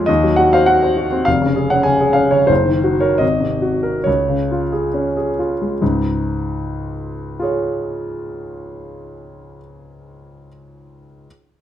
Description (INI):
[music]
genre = classical, romantic character piece for solo piano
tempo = 65-104 BPM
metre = 2/4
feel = rubato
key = Db major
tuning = A4 = 441 Hz
[part]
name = warm grand piano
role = solo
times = 0.0-11.3 s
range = F1 to Ab5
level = -15 LUFS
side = equal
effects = none
[sound]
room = moderate large studio reverb, RT60 0.8 s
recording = minimal, uncompressed stereo recording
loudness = -14 LUFS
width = side -10 dB against mid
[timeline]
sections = 0.0-5.8 A section; 5.8-9.0 B section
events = slowing down 1.9-5.8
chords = 0.1 Cdim/Eb; 1.3 Db/F; 2.5 Ebm/Gb; 3.2 Ab9; 4.1 Db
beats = | 0.08 0.67 | 1.26 1.86 | 2.50 3.21 | 4.06 4.94 | 5.81 6.58 | 7.39 8.19